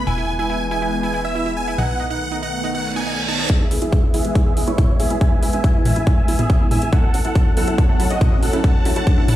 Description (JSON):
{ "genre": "uplifting trance", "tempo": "140 BPM", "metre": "4/4", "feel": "straight", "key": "E major", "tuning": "A4 = 441 Hz", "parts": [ { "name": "big supersaw lead", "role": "melody", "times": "0.0-9.4 s", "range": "E4 to A5", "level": "-24 LUFS", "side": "right 1 dB", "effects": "phaser, sidechain pumping, low-pass filter, tape echo" }, { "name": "lush unison pad", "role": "sustained chords", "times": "0.0-9.4 s", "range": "D#3 to C#4", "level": "-26 LUFS", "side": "left 1 dB", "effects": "chorus, phaser, sidechain pumping" }, { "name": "plucky analog bass", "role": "bass", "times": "0.0-9.4 s", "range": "E1 to B1", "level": "-28 LUFS", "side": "equal", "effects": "sidechain pumping, high-pass filter" }, { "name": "analog pluck", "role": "arpeggios", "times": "0.1-9.3 s", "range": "D#4 to E4", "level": "-29 LUFS", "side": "right 3 dB", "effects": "chorus, sidechain pumping, digital delay" }, { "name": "reverse cymbal and riser", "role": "sound effects", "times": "2.8-9.4 s", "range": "none", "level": "-29 LUFS", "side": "right 2 dB", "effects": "none" }, { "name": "big-room dance drum kit", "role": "drums", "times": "3.5-9.4 s", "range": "hi-hat, toms", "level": "-25 LUFS", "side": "left 1 dB", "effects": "overdrive" }, { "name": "electronic kick drum", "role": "drums", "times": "3.5-9.2 s", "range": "none", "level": "-16 LUFS", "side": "equal", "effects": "overdrive" } ], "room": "light reverb, digital ambience", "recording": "played on a big sound system in a bare room, large studio reverb", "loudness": "-16 LUFS", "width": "side -13 dB against mid", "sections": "0.0-3.5 A section; 3.5-9.4 B section", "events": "filter sweep on supersaw synth 0.0-3.5, 3.5-9.4; reverse cymbal 2.8-3.5; build-up 3.5-9.4; riser 3.5-9.4; filter sweep on synth pluck 3.5-9.4", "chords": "0.1 E; 1.8 B7; 3.5 E; 6.9 F#m" }